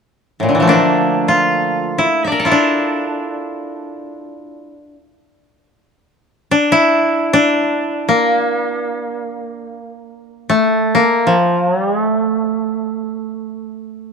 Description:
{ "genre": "japanese traditional, Japanese chamber music", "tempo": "free time", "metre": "none", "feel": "none", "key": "D hirajoshi", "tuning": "A4 = 440 Hz", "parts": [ { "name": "koto", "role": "solo", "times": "0.4-14.1 s", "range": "A2 to E5", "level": "-14 LUFS", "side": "equal", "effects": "none" } ], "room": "moderate plate reverb, RT60 2.6 s", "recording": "none", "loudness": "-13 LUFS", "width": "side -5 dB against mid", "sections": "0.0-14.1 A section", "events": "none", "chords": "none" }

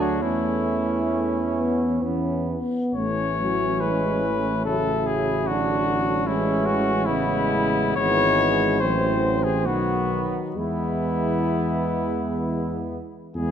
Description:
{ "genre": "classical, hymn-like piece for brass band", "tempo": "63-76 BPM", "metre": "3/4", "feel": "rubato", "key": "A major, E major from 8.0 s", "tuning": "A4 = 438 Hz", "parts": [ { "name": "clear cornet", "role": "melody", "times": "0.0-13.5 s", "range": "E4 to C#5", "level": "-26 LUFS", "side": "left 5 dB", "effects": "none" }, { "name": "warm flugelhorn", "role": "second line", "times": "0.0-13.5 s", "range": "B3 to E4", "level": "-28 LUFS", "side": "right 6 dB", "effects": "none" }, { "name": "clear trombone", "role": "accompaniment", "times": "0.0-13.5 s", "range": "C#3 to F#3", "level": "-31 LUFS", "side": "right 3 dB", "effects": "none" }, { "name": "mellow trombone section", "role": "accompaniment", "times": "0.0-13.5 s", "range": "F#3 to C#4", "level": "-28 LUFS", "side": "left 2 dB", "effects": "none" }, { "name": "dark tuba", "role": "bass", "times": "0.0-13.5 s", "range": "G#1 to E2", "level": "-27 LUFS", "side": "equal", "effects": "none" } ], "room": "wet scoring stage reverb, RT60 1.9 s", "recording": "none", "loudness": "-21 LUFS", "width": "side -8 dB against mid", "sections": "0.0-13.4 A section", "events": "none", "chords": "0.2 A/E; 2.0 E5; 2.9 A; 5.5 E7/A; 8.0 E/G#; 8.8 F#m7b5/A; 9.7 B; 10.6 E" }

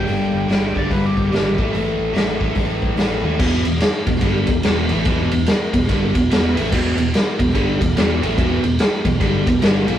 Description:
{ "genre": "blues rock power trio and southern rock", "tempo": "145 BPM", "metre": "4/4", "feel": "swing 63% on 8ths", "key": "E minor", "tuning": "A4 = 440 Hz", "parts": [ { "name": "overdriven slide guitar", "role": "melody", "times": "0.0-1.7 s", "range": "G4 to G5", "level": "-27 LUFS", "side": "right 2 dB", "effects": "none" }, { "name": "biting overdriven guitar", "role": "riff", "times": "0.0-10.0 s", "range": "E2 to A#3", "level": "-19 LUFS", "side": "equal", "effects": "none" }, { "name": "fingered electric bass", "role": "bass", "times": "0.0-10.0 s", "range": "E1 to D#2", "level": "-24 LUFS", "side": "left 1 dB", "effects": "none" }, { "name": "raw garage drum kit", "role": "drums", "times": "0.1-9.9 s", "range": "crash cymbal, hi-hat, kick drum, ride cymbal, snare drum", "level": "-19 LUFS", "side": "equal", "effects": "none" } ], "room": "moderate stone room reverb, RT60 0.9 s", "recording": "rough rehearsal-room recording, warm saturation", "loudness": "-16 LUFS", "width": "side -11 dB against mid", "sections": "0.0-3.4 A section; 3.4-10.0 B section", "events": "none", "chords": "0.0 G5; 1.5 A5; 3.4 Em" }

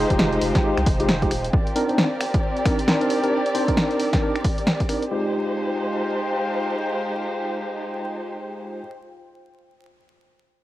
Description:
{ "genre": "UK garage, two-step garage", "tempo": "134 BPM", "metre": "4/4", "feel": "swing 60% on 16ths", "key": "F minor", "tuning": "A4 = 441 Hz", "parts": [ { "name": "warm studio violin section", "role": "sustained chords", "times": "0.0-8.8 s", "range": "Ab3 to D5", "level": "-27 LUFS", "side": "equal", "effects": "vintage 12-bit sampler grit, sidechain pumping, cassette tape" }, { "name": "tine electric piano", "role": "stabs", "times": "0.0-8.8 s", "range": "Ab3 to C5", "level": "-25 LUFS", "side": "equal", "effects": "medium stereo tremolo, low-pass filter, cassette tape, analog delay" }, { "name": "saturated sub bass", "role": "bass", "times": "0.0-1.5 s", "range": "Eb1 to C2", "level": "-27 LUFS", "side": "equal", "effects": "none" }, { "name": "warbly tape-like pad", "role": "texture", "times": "0.0-9.0 s", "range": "C4 to G5", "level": "-31 LUFS", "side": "left 1 dB", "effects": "chorus, built-in reverb, sidechain pumping, cassette tape" }, { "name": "electronic kick drum", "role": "drums", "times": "0.1-4.9 s", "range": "none", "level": "-22 LUFS", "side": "equal", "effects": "overdrive, cassette tape" }, { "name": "punchy analog drum machine", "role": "drums", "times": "0.1-5.1 s", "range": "finger snaps, hi-hat, snare drum", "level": "-24 LUFS", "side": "equal", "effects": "overdrive, cassette tape" } ], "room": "light reverb", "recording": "home recording on cassette, vinyl crackle", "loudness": "-20 LUFS", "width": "side -15 dB against mid", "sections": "0.0-5.1 A section; 5.1-8.7 B section", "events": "filter sweep on tine electric piano 0.0-5.1", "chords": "0.0 Fm9; 1.5 Cm9; 5.1 Fm9" }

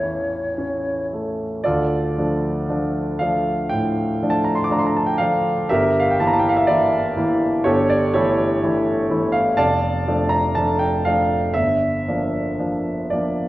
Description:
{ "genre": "classical, romantic duo for flute and grand piano", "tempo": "55-63 BPM", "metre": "4/4", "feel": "rubato", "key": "D minor", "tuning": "A4 = 440 Hz", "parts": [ { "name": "hollow concert flute", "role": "melody", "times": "0.0-1.1 s", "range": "C#5", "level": "-26 LUFS", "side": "left 1 dB", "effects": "none" }, { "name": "warm grand piano", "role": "accompaniment", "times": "0.0-13.5 s", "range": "F1 to D6", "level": "-18 LUFS", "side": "equal", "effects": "none" } ], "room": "wet recital hall reverb, RT60 1.7 s", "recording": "worn, warbling old tape, cassette tape, warbly pitch drift", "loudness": "-17 LUFS", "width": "side -16 dB against mid", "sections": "0.0-1.6 A section; 1.6-13.5 B section", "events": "none", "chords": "0.0 A; 1.6 Dm; 5.7 Edim/G; 7.7 A7/G; 9.6 Dm/F; 11.6 Gm7" }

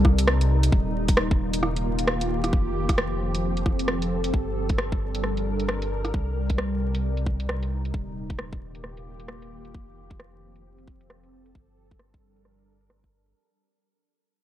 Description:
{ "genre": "future garage", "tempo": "133 BPM", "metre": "4/4", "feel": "swing 60% on 16ths", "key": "unclear", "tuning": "A4 = 439 Hz", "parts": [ { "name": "ethereal airy pad", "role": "sustained chords", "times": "0.0-13.4 s", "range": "C3 to Bb4", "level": "-28 LUFS", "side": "equal", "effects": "ensemble chorus, built-in reverb, sidechain pumping" }, { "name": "warm sub bass", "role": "bass", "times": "0.0-13.3 s", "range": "Eb1 to C2", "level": "-27 LUFS", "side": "equal", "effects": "sidechain pumping" }, { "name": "electronic kick drum", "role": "drums", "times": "0.0-13.1 s", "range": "none", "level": "-23 LUFS", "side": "equal", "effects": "overdrive" }, { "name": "garage drum kit", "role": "drums", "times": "0.1-13.3 s", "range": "hi-hat, rim click", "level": "-27 LUFS", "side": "right 1 dB", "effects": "overdrive, low-pass filter on perc, low-pass filter on hats, low-pass filter on snare" } ], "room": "light reverb", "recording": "echo-heavy mix, vinyl crackle", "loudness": "-23 LUFS", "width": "side -12 dB against mid", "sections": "0.0-13.4 A section", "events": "fade-out 0.0-13.4; filter sweep on drum 0.0-13.4", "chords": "0.0 Cm; 0.7 Eb; 2.5 F; 4.3 Gm; 6.1 Cm7; 7.9 Eb; 9.7 F; 11.6 Gm" }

